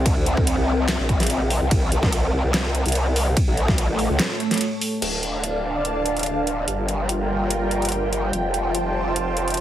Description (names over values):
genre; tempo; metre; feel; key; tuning
heavy wobble dubstep; 145 BPM; 4/4; swing 53% on 16ths, half-time; D minor from 5.0 s; A4 = 440 Hz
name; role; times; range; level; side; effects
lush unison pad; sustained chords; 0.0-9.6 s; G3 to A5; -25 LUFS; right 1 dB; chorus, phaser, sidechain pumping
growl bass; bass; 0.0-9.6 s; D1 to D2; -23 LUFS; equal; chorus, overdrive
dubstep drum kit; drums; 0.1-9.6 s; crash cymbal, handclaps, hi-hat, ride cymbal, snare drum; -26 LUFS; equal; overdrive
electronic kick drum; drums; 0.1-3.8 s; none; -21 LUFS; equal; none
room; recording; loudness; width
light reverb; heavily compressed radio sound; -19 LUFS; side -12 dB against mid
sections
0.0-5.0 A section; 5.0-9.6 B section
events
drop 0.0-5.0; break 4.2-5.0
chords
0.0 C; 3.4 A7; 5.0 Dm; 6.7 Gm7; 8.3 Fadd9